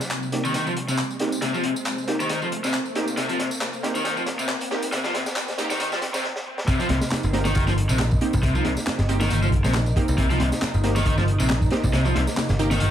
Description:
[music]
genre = breakbeat, breaks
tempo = 137 BPM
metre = 4/4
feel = swing 56% on 16ths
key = unclear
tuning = A4 = 440 Hz
[part]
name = phased analog pad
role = sustained chords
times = 0.0-12.9 s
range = C3 to Eb4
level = -31 LUFS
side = equal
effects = phaser, chorus, sidechain pumping
[part]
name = orchestra-hit-like synth stab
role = stabs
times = 0.0-12.7 s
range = Bb3 to G4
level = -30 LUFS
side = right 2 dB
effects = built-in reverb, tape echo
[part]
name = crunchy breakbeat drum kit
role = drums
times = 0.0-12.9 s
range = crash cymbal, hi-hat, kick drum, snare drum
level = -26 LUFS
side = equal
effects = high-pass filter on kick, high-pass filter on hats, high-pass filter on cymbals, high-pass filter on snare, high-pass filter on room
[part]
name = electronic tambourine and handclaps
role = drums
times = 0.0-12.9 s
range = none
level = -32 LUFS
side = equal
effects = high-pass filter on perc, high-pass filter on snare, high-pass filter on room
[part]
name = riser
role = sound effects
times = 0.0-6.2 s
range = none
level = -36 LUFS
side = right 1 dB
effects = none
[part]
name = raw garage guitar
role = riff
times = 0.4-12.9 s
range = C3 to F3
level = -26 LUFS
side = left 1 dB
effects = overdrive, tape echo
[part]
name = modern bright picked electric bass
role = bass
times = 6.9-12.9 s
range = G1 to C2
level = -22 LUFS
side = equal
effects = none
[sound]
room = moderate studio reverb, RT60 0.6 s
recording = vinyl crackle, high-pass filter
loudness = -20 LUFS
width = side -10 dB against mid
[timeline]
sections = 0.0-6.7 A section; 6.7-12.9 B section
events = build-up 0.0-6.7; drum fill 0.0-6.2, 6.2-6.7; riser 0.0-6.2; filter sweep on overdriven electric guitar 0.0-6.7; filter sweep on synth stab 0.0-6.7; filter sweep on analog synth pad 0.0-6.7; stop 6.2-6.7; drop 6.7-12.9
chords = 0.0 Cm7

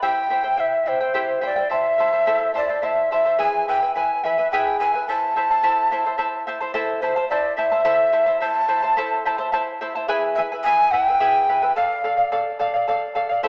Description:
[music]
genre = andean folk, Andean ensemble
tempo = 72 BPM (dotted quarters)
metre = 6/8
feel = straight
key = unclear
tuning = A4 = 440 Hz
[part]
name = breathy mellow large quena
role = melody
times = 0.0-12.3 s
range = C5 to A5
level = -22 LUFS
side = equal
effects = none
[part]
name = charango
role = accompaniment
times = 0.0-13.5 s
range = E4 to A5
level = -26 LUFS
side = equal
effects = none
[sound]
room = wet recital hall reverb, RT60 1.4 s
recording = small speaker sound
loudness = -21 LUFS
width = mono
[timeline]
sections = 0.0-6.7 A section; 6.7-13.5 B section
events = none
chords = 0.0 C; 1.7 Am; 3.4 E; 5.1 Am; 10.1 E; 11.8 Dm

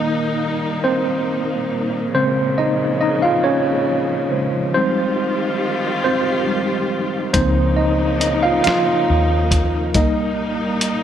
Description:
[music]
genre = slow six-eight R&B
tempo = 46 BPM (dotted quarters)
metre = 6/8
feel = straight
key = F minor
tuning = A4 = 441 Hz
[part]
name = tine electric piano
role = accompaniment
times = 0.0-11.0 s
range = Db3 to F5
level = -18 LUFS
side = right 1 dB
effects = overdrive, fast stereo tremolo
[part]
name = warm studio string section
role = sustained chords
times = 0.0-11.0 s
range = Bb2 to G4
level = -23 LUFS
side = left 1 dB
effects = none
[part]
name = vintage muted fingered electric bass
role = bass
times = 7.3-11.0 s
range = C2 to Eb2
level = -21 LUFS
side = left 1 dB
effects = none
[part]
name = dusty soul sampler-style drum kit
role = drums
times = 7.3-11.0 s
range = hi-hat, kick drum, snare drum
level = -19 LUFS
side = left 1 dB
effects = none
[sound]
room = light reverb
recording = none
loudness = -16 LUFS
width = side -9 dB against mid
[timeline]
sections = 0.0-11.0 A section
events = tine electric piano solo 0.0-11.0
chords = 0.0 Cm7; 2.1 Bbm9; 4.7 Fm9; 7.3 Db69; 9.9 Cm7

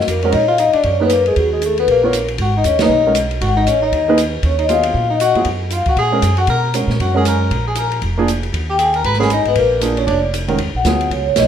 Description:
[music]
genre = jazz, small-group swing and bop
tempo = 234 BPM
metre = 4/4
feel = swing 60% on 8ths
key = Eb minor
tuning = A4 = 440 Hz
[part]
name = vibraphone with soft mallets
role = melody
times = 0.0-11.5 s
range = Gb4 to Cb6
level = -16 LUFS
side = left 3 dB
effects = none
[part]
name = breathy tenor saxophone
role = second line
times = 0.0-10.2 s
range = Gb3 to Cb5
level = -23 LUFS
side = right 3 dB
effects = none
[part]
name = upright bass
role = bass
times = 0.0-11.5 s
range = F1 to B2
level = -20 LUFS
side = right 1 dB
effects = none
[part]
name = open jazz drum kit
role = drums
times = 0.0-11.4 s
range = hi-hat, kick drum, ride cymbal, snare drum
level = -24 LUFS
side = equal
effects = none
[part]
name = warm baby grand piano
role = accompaniment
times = 0.2-11.2 s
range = Eb3 to Db5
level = -20 LUFS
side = right 4 dB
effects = none
[sound]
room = moderate large studio reverb, RT60 1.1 s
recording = minimal, uncompressed stereo recording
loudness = -13 LUFS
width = side -8 dB against mid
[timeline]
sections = 0.0-10.6 A section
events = band accent 2.8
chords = 0.0 Ebm; 2.4 Abm7; 4.4 Ebm; 6.5 B5; 7.5 Bb5; 8.5 Ebadd11; 9.0 Abm11; 9.6 Bb7; 10.6 Ebm7 (rootless)

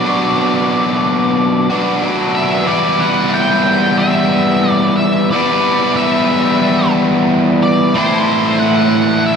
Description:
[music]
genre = rock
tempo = 91 BPM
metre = 4/4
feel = straight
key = E minor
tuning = A4 = 440 Hz
[part]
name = octave-fuzz lead guitar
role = melody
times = 0.0-9.4 s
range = C5 to G5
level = -18 LUFS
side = equal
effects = distortion, ping-pong delay
[part]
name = biting overdriven guitar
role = riff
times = 0.0-9.4 s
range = A2 to F#4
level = -12 LUFS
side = equal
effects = wide subtle chorus
[sound]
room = wet plate reverb, RT60 2.6 s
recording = dreamy mix soaked in reverb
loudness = -11 LUFS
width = side -6 dB against mid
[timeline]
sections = 0.0-2.7 A section; 2.7-9.4 B section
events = none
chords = 0.0 Bm; 2.7 Em7; 7.9 Am

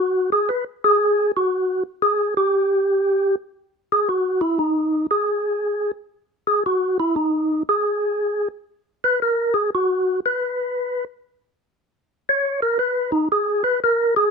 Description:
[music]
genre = jazz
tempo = 117 BPM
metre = 4/4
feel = swing 66% on 8ths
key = G# minor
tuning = A4 = 440 Hz
[part]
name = percussive tonewheel organ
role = solo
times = 0.0-14.3 s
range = D#4 to C#5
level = -18 LUFS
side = equal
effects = fast rotary speaker
[sound]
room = little or no reverb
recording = close, detailed microphones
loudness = -18 LUFS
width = side -5 dB against mid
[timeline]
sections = 0.0-3.6 A section; 3.6-14.3 B section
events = tonewheel organ solo 3.6-14.3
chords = none

